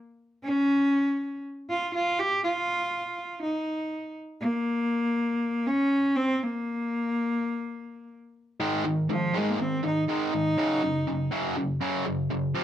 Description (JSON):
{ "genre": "rock", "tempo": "122 BPM", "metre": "4/4", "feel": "straight", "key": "Ab major", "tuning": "A4 = 441 Hz", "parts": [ { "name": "rich cello", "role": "melody", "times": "0.4-11.5 s", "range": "F3 to G4", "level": "-26 LUFS", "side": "equal", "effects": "slapback echo" }, { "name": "distorted electric guitar", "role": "riff", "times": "8.6-12.6 s", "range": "F2 to Ab3", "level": "-27 LUFS", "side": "equal", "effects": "overdrive" } ], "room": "moderate studio reverb, RT60 0.7 s", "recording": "none", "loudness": "-25 LUFS", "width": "side -11 dB against mid", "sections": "0.0-8.6 A section; 8.6-12.6 B section", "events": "half time 0.0-8.6; cello solo 8.6-12.6", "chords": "0.0 N.C.; 8.6 Ab5; 10.6 Gb5" }